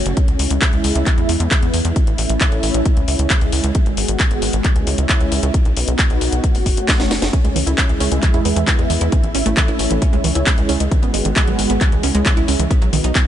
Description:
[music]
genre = uplifting trance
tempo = 134 BPM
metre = 4/4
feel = straight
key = C# minor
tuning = A4 = 440 Hz
[part]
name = analog string pad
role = sustained chords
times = 0.0-13.3 s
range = G#3 to F#4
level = -22 LUFS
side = right 1 dB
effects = ensemble chorus, sidechain pumping
[part]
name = tight sequencer bass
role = bass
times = 0.0-13.1 s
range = F#1 to E2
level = -20 LUFS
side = equal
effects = sidechain pumping
[part]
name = house drum kit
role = drums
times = 0.1-13.2 s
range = handclaps, hi-hat, snare drum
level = -21 LUFS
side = left 1 dB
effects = none
[part]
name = electronic kick drum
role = drums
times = 0.2-13.2 s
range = none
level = -16 LUFS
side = equal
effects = none
[part]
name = wide unison pluck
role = arpeggios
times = 7.3-13.2 s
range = D#3 to E4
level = -23 LUFS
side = right 4 dB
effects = auto-pan, sidechain pumping, tape echo
[sound]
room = little or no reverb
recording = nothing above 10.7 kHz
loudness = -14 LUFS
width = side -11 dB against mid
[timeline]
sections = 0.0-13.3 A section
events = drum fill 6.9-7.3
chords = 0.2 C#m; 1.1 E; 2.0 A; 2.9 C#m; 3.8 G#m7; 4.6 C#m; 5.5 B; 6.4 F#m; 7.3 C#m; 8.2 E; 9.1 A; 10.0 C#m; 10.9 G#m7; 11.8 C#m; 12.7 B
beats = | 0.17 0.62 1.06 1.51 | 1.96 2.41 2.85 3.30 | 3.75 4.20 4.65 5.09 | 5.54 5.99 6.44 6.88 | 7.33 7.78 8.23 8.68 | 9.12 9.57 10.02 10.47 | 10.91 11.36 11.81 12.26 | 12.71 13.15

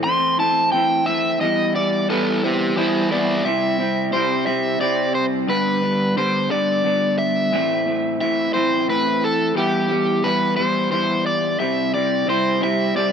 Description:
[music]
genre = rock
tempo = 59 BPM (dotted quarters)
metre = 6/8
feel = straight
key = A minor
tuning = A4 = 440 Hz
[part]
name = crunchy overdriven guitar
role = melody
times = 0.0-13.1 s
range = E4 to C6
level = -20 LUFS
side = equal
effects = none
[part]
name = electric guitar through a small old amp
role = riff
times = 0.0-13.1 s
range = G2 to E4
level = -20 LUFS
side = equal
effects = double-tracked left and right
[sound]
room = light reverb, digital ambience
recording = rough home demo mix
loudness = -17 LUFS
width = side -7 dB against mid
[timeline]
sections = 0.0-3.5 A section; 3.5-13.1 B section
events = overdriven electric guitar solo 0.0-3.5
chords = 0.0 Am; 1.4 Em; 3.5 C; 5.5 G; 7.5 Am; 9.6 Em; 11.6 C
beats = 0.39 | 1.41 2.43 | 3.45 4.47 | 5.49 6.50 | 7.52 8.54 | 9.56 10.58 | 11.60 12.61

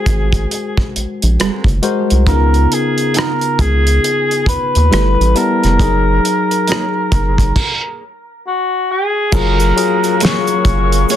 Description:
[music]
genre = R&B, neo-soul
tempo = 68 BPM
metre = 4/4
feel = swing 62% on 16ths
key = F# major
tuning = A4 = 439 Hz
[part]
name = dark cor anglais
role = melody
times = 0.0-11.2 s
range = F#4 to C#5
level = -18 LUFS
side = equal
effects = plate reverb
[part]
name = barky tine electric piano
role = accompaniment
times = 0.0-11.2 s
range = C#3 to A5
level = -18 LUFS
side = left 4 dB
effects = plate reverb
[part]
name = rubbery square bass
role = bass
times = 0.1-11.1 s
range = E#1 to D#2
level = -14 LUFS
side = equal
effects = none
[part]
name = cloth-damped thuddy drum kit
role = drums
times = 0.1-11.2 s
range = crash cymbal, handclaps, hi-hat, kick drum, rim click, snare drum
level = -17 LUFS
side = equal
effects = soft clipping on snare
[part]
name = nylon-string guitar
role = second line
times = 1.4-11.2 s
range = G#3 to C#5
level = -24 LUFS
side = right 6 dB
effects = plate reverb, tape echo
[part]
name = hollow soft pad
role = sustained chords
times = 9.3-11.2 s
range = F#3 to E#5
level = -26 LUFS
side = equal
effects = none
[part]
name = warm horn section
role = stabs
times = 9.3-11.2 s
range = A#3 to F#4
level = -26 LUFS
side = right 2 dB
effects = plate reverb
[part]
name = tube shaker and finger snaps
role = percussion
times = 9.3-11.2 s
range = none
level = -26 LUFS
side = right 3 dB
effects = none
[sound]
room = light reverb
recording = dense, heavily limited modern master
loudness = -12 LUFS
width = side -11 dB against mid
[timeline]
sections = 0.0-9.3 A section; 9.3-11.2 B section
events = stop 7.6-9.3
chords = 0.0 G#9; 2.3 C#13; 4.9 G69; 5.8 F#69; 9.3 F#maj9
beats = 0.50 1.38 | 2.27 3.15 4.03 4.91 | 5.80 6.68 7.56 8.44 | 9.33 10.21 11.09

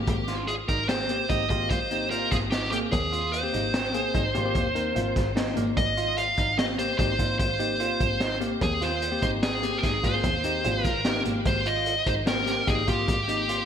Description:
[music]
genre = progressive instrumental, band music in an uneven meter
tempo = 148 BPM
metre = 7/4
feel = straight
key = Ab major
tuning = A4 = 440 Hz
[part]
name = bell-like tine electric piano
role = accompaniment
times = 0.0-13.7 s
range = Bb3 to Bb4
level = -33 LUFS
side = left 6 dB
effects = none
[part]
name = clear double bass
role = bass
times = 0.1-13.5 s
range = Ab1 to Eb2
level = -31 LUFS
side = equal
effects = none
[part]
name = crunchy breakbeat drum kit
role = drums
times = 0.1-13.6 s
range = hi-hat, kick drum, snare drum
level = -30 LUFS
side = equal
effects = gated reverb
[part]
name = electric guitar at the edge of break-up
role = arpeggios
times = 0.3-13.7 s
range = Bb3 to F4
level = -33 LUFS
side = right 4 dB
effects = wide subtle chorus, digital delay
[part]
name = smooth overdriven lead guitar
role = melody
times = 0.5-13.7 s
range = G4 to F5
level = -26 LUFS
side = right 1 dB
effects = digital delay
[sound]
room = moderate lush hall reverb, RT60 1.9 s, small room ambience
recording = bright 1980s-style digital production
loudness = -23 LUFS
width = side -8 dB against mid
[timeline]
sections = 0.0-13.7 A section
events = none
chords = 0.0 Abmaj7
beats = | 0.08 0.48 0.89 1.30 1.71 2.11 2.52 | 2.93 3.33 3.74 4.15 4.55 4.96 5.37 | 5.77 6.18 6.58 6.99 7.40 7.80 8.21 | 8.61 9.02 9.43 9.83 10.24 10.64 11.05 | 11.46 11.86 12.27 12.68 13.08 13.49

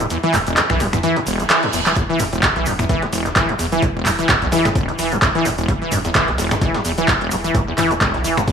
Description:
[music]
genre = acid house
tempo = 129 BPM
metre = 4/4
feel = swing 56% on 16ths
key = unclear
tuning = A4 = 440 Hz
[part]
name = acid bass, saw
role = riff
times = 0.0-8.5 s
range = E1 to E3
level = -19 LUFS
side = equal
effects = tube saturation, analog chorus, dub echo
[part]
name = saturated sub bass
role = bass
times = 0.0-8.4 s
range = D1 to B1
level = -28 LUFS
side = equal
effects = tube saturation, sidechain pumping
[part]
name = electro analog drum machine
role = drums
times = 0.0-8.5 s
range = finger snaps, handclaps, hi-hat, toms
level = -19 LUFS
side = right 1 dB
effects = none
[part]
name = dusty soul sampler-style drum kit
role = drums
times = 0.1-8.5 s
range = hi-hat, snare drum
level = -30 LUFS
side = equal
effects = none
[part]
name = tube shaker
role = percussion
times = 0.1-8.5 s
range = none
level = -32 LUFS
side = right 5 dB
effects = none
[part]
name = reverse cymbal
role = sound effects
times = 1.2-2.0 s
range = none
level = -27 LUFS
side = right 4 dB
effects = none
[part]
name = electronic kick drum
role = drums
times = 2.0-8.5 s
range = none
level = -20 LUFS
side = equal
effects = none
[sound]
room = light reverb, digital ambience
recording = small room ambience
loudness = -15 LUFS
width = side -7 dB against mid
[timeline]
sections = 0.0-8.5 A section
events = kick drops out 0.1-2.0; reverse cymbal 1.2-2.0; drum fill 1.5-2.0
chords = 0.0 E5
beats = | 0.10 0.57 1.03 1.50 | 1.96 2.43 2.89 3.36 | 3.82 4.29 4.75 5.22 | 5.68 6.15 6.62 7.08 | 7.54 8.01 8.48

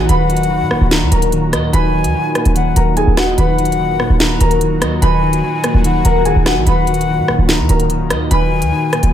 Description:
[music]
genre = hip hop, drill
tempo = 146 BPM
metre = 4/4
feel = half-time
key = Eb harmonic minor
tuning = A4 = 439 Hz
[part]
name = dark concert grand piano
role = melody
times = 0.0-9.1 s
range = Gb4 to Cb6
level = -20 LUFS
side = left 1 dB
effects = lush chorus, ping-pong delay
[part]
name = breathy hollow jazz flute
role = second line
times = 0.0-9.1 s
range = Gb5 to Bb5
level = -22 LUFS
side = left 6 dB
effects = ping-pong delay
[part]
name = clean electric guitar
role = accompaniment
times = 0.0-9.1 s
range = Bb2 to Eb5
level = -19 LUFS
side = equal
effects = ensemble chorus
[part]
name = sweeping resonant pad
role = sustained chords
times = 0.0-9.1 s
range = Bb2 to Gb4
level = -23 LUFS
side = right 1 dB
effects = chorus
[part]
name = short 808-style bass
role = bass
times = 0.0-9.1 s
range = D1 to Bb2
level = -16 LUFS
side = equal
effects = none
[part]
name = drill drum kit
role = drums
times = 0.1-9.1 s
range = hi-hat, rim click, snare drum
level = -19 LUFS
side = equal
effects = none
[sound]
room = light reverb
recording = none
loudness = -12 LUFS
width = side -10 dB against mid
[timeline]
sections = 0.0-9.1 A section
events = none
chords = 0.0 Ebm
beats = | 0.09 0.50 0.91 1.32 | 1.74 2.15 2.56 2.97 | 3.38 3.79 4.20 4.61 | 5.02 5.43 5.84 6.25 | 6.67 7.08 7.49 7.90 | 8.31 8.72 9.13

